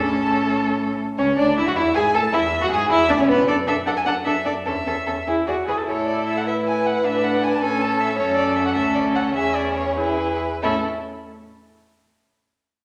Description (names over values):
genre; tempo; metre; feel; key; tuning
quick classical-period movement for string quartet; 90-106 BPM (dotted quarters); 6/8; rubato; A major; A4 = 440 Hz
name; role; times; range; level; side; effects
rich violin; melody; 0.0-10.9 s; A4 to A5; -27 LUFS; equal; none
warm violin; second line; 0.0-10.9 s; B3 to B4; -25 LUFS; equal; none
rich viola; accompaniment; 0.0-10.9 s; B3 to A4; -25 LUFS; equal; none
clear cello; bass; 0.0-10.9 s; C#2 to B2; -32 LUFS; equal; none
room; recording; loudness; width
wet recital hall reverb, RT60 1.6 s; none; -21 LUFS; mono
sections
0.0-1.2 A section; 1.2-10.6 B section; 10.6-11.9 C section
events
slowing down 7.6-10.6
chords
0.0 A; 1.2 A/C#; 2.3 E; 3.5 D/F#; 4.7 A/E; 5.3 E; 5.9 A5; 7.0 D69/A; 7.6 A; 8.2 F#m; 8.8 Dmaj7sus2; 9.4 E; 10.6 A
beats
0.56 | 1.18 1.76 | 2.34 2.91 | 3.48 4.06 | 4.66 5.27 | 5.87 6.47 | 7.05 7.62 | 8.18 8.76 | 9.35 9.98 | 10.62